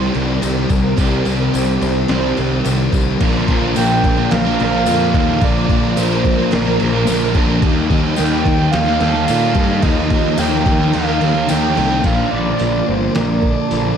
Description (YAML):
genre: rock, shoegaze and dream pop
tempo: 108 BPM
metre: 4/4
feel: straight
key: Bb major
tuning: A4 = 439 Hz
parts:
  - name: picked twelve-string acoustic guitar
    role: arpeggios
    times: 0.0-14.0 s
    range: F4 to C5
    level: -27 LUFS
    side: right 10 dB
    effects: ensemble chorus, diffuse ambient delay
  - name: crunchy overdriven guitar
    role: riff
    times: 0.0-14.0 s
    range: Bb2 to Bb4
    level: -21 LUFS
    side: right 10 dB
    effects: reverse reverb
  - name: thick fuzz guitar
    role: riff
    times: 0.0-14.0 s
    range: Bb2 to Eb4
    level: -20 LUFS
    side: left 10 dB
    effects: distortion, analog chorus
  - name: fuzz picked electric bass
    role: bass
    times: 0.0-13.9 s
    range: G1 to Bb2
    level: -19 LUFS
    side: equal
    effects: overdrive
  - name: boom bap sampler-style drum kit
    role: drums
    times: 0.1-13.8 s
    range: crash cymbal, hi-hat, kick drum, snare drum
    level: -21 LUFS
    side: equal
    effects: none
  - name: tambourine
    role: percussion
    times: 0.4-11.6 s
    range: none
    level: -33 LUFS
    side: left 15 dB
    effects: none
  - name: reedy FM lead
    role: melody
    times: 3.8-14.0 s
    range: Bb4 to G5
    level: -21 LUFS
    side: right 3 dB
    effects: chorus, tremolo, diffuse ambient delay
room: moderate plate reverb, RT60 1.0 s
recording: dreamy mix soaked in reverb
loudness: -13 LUFS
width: side -8 dB against mid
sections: 0.0-3.2 A section; 3.2-12.0 B section; 12.0-14.0 C section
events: kick and snare drop out 10.9-12.0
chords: 0.0 Cm7; 3.2 Bbmaj7; 7.6 Eb; 9.8 Ebsus2; 12.0 Bbmaj7